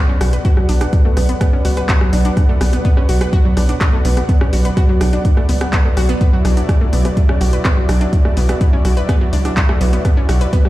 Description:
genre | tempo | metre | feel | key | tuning
melodic techno | 125 BPM | 4/4 | straight | B minor | A4 = 443 Hz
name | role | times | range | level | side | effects
lush unison pad | sustained chords | 0.0-10.7 s | B3 to F#5 | -25 LUFS | equal | chorus, sidechain pumping
analog pluck | arpeggios | 0.0-10.7 s | F#3 to B4 | -23 LUFS | equal | chorus, sidechain pumping, ping-pong delay
analog drone | drone | 0.1-10.7 s | B2 to F#3 | -26 LUFS | right 1 dB | chorus, sidechain pumping
tight sequencer bass | bass | 0.2-10.5 s | B1 to C#2 | -15 LUFS | equal | tube saturation, sidechain pumping
punchy analog drum machine | drums | 0.2-10.7 s | handclaps, hi-hat, rim click | -24 LUFS | equal | none
electronic kick drum | drums | 0.4-10.6 s | none | -13 LUFS | equal | none
room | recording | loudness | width
little or no reverb | played on a big sound system in a bare room, stone room reverb | -12 LUFS | side -16 dB against mid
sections
0.0-10.7 A section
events
none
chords
0.0 Bm; 6.2 Dadd9/B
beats
| 0.45 0.93 1.41 1.89 | 2.37 2.85 3.33 3.81 | 4.29 4.77 5.25 5.73 | 6.21 6.69 7.17 7.65 | 8.13 8.61 9.09 9.57 | 10.05 10.53

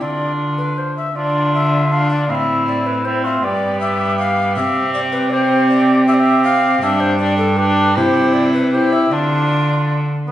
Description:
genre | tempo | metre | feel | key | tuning
classical, renaissance-style consort dance | 158 BPM | 3/4 | straight | D dorian | A4 = 440 Hz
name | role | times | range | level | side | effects
mellow tenor recorder | melody | 0.0-10.3 s | A4 to F5 | -20 LUFS | left 3 dB | none
mellow cor anglais | second line | 0.0-10.3 s | B3 to G4 | -20 LUFS | right 3 dB | none
warm viola | accompaniment | 0.0-10.3 s | A3 to E4 | -20 LUFS | left 1 dB | none
rich cello | bass | 0.0-10.3 s | G2 to D3 | -19 LUFS | right 1 dB | none
room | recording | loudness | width
wet recital hall reverb, RT60 1.6 s | recorded in a church or concert hall, nothing above 10.3 kHz | -14 LUFS | side -12 dB against mid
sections
0.0-1.2 A section; 1.2-10.3 A section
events
none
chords
0.0 Dm; 2.3 Am; 3.4 G; 4.6 C; 6.8 G; 8.0 C; 9.1 Dm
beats
| 0.02 0.40 0.79 | 1.17 1.55 1.93 | 2.31 2.68 3.06 | 3.44 3.82 4.19 | 4.57 4.95 5.32 | 5.70 6.08 6.45 | 6.83 7.21 7.59 | 7.97 8.35 8.73 | 9.12 9.50 9.89 | 10.27

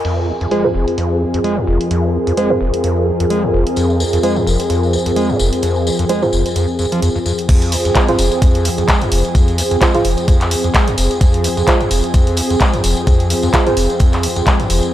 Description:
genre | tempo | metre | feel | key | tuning
acid house | 129 BPM | 4/4 | swing 56% on 16ths | unclear | A4 = 436 Hz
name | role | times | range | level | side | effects
warm analog pad | sustained chords | 0.3-14.9 s | F2 to Ab4 | -18 LUFS | equal | chorus, sidechain pumping
overdriven acid bass | riff | 0.0-14.8 s | F1 to Ab3 | -18 LUFS | equal | distortion, wide subtle chorus, tape echo
deep mellow chord stab | stabs | 0.0-14.9 s | F4 to C5 | -20 LUFS | right 3 dB | chorus, tape echo
punchy analog drum machine | drums | 0.0-14.9 s | crash cymbal, handclaps, hi-hat | -21 LUFS | equal | low-pass filter on hats, low-pass filter on snare, low-pass filter on cymbals
warbly tape-like pad | texture | 0.0-7.5 s | F4 to Ab5 | -24 LUFS | left 2 dB | chorus, built-in reverb, sidechain pumping
tambourine | percussion | 3.8-14.9 s | none | -27 LUFS | left 4 dB | none
electronic kick drum | drums | 7.5-14.6 s | none | -13 LUFS | equal | none
room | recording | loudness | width
light reverb, digital ambience | dry, gritty hardware recording | -12 LUFS | side -12 dB against mid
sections
0.0-7.5 A section; 7.5-14.9 B section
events
drop 7.5-14.9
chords
0.0 Fm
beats
| 0.05 0.51 0.98 1.44 | 1.91 2.37 2.84 3.30 | 3.77 4.23 4.70 5.16 | 5.63 6.09 6.56 7.02 | 7.49 7.95 8.42 8.88 | 9.35 9.81 10.28 10.74 | 11.21 11.68 12.14 12.61 | 13.07 13.54 14.00 14.47 | 14.93

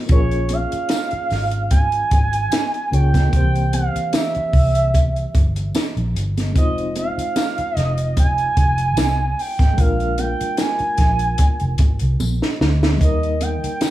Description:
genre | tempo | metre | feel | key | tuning
lush 1970s-style soul | 74 BPM | 4/4 | swing 54% on 16ths | Bb dorian | A4 = 440 Hz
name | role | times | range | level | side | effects
mellow reed electric piano | accompaniment | 0.0-13.9 s | E3 to Db5 | -28 LUFS | left 2 dB | fast tremolo
expressive synth lead | melody | 0.1-13.9 s | Db5 to Ab5 | -22 LUFS | right 2 dB | chorus
vintage muted fingered electric bass | bass | 0.1-13.7 s | F1 to Eb2 | -20 LUFS | equal | none
compact cocktail drum kit | drums | 0.1-13.9 s | hi-hat, kick drum, snare drum | -19 LUFS | equal | none
congas | percussion | 0.1-13.9 s | none | -30 LUFS | right 6 dB | none
tambourine | percussion | 0.9-13.9 s | none | -35 LUFS | left 6 dB | none
room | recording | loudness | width
small room ambience | none | -16 LUFS | side -14 dB against mid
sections
0.1-13.9 A section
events
drum fill 12.2-13.0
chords
0.1 Bbm7; 3.3 C7; 6.6 Fm7; 9.8 Bb7; 13.0 Eb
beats
| 0.10 0.90 1.71 2.52 | 3.33 4.14 4.94 5.75 | 6.56 7.36 8.17 8.97 | 9.78 10.59 11.39 12.20 | 13.01 13.81

